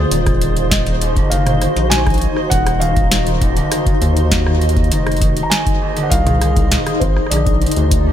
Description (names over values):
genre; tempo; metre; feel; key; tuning
IDM; 100 BPM; 4/4; straight; Eb melodic minor; A4 = 440 Hz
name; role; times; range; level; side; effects
granular cloud pad; sustained chords; 0.0-8.1 s; Bb3 to Eb5; -21 LUFS; left 2 dB; built-in reverb
concert harp; arpeggios; 0.0-8.1 s; Eb2 to Bb3; -22 LUFS; equal; tape echo
round analog bass; bass; 0.0-8.1 s; Eb1 to Eb2; -17 LUFS; equal; none
flickering grainy texture; texture; 0.0-8.1 s; C5; -28 LUFS; right 4 dB; built-in reverb, sidechain pumping
booming analog drum machine; drums; 0.1-8.0 s; hi-hat, rim click, snare drum, toms; -20 LUFS; equal; none
electronic kick drum; drums; 0.3-8.0 s; none; -19 LUFS; equal; none
felt-muted upright piano; melody; 0.7-8.1 s; C5 to Bb5; -23 LUFS; equal; dub echo
room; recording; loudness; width
digital ambience; none; -13 LUFS; side -10 dB against mid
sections
0.0-8.1 A section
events
none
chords
0.1 Ebmadd9; 4.9 Fm7; 7.3 Bb7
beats
| 0.12 0.71 1.31 1.92 | 2.52 3.12 3.71 4.32 | 4.92 5.51 6.12 6.71 | 7.32 7.92